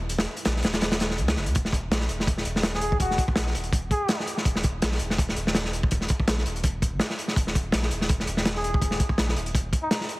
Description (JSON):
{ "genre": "drum and bass, jungle", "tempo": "165 BPM", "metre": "4/4", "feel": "swing 55% on 16ths", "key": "Eb minor", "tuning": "A4 = 441 Hz", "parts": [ { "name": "saturated sub bass", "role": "bass", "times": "0.0-9.7 s", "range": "Eb1 to Eb2", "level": "-29 LUFS", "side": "equal", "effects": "tube saturation" }, { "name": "crunchy breakbeat drum kit", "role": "drums", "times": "0.1-10.2 s", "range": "hi-hat, kick drum, snare drum", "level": "-24 LUFS", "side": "equal", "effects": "none" }, { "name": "trumpet with bucket mute", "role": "melody", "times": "2.7-4.2, 8.6-10.0 s", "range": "Eb4 to Ab4", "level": "-30 LUFS", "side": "left 1 dB", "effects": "vintage 12-bit sampler grit, dub echo" } ], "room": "light reverb, small room ambience", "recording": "heavily compressed radio sound", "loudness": "-23 LUFS", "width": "side -21 dB against mid", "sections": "0.0-10.2 A section", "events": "none", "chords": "none" }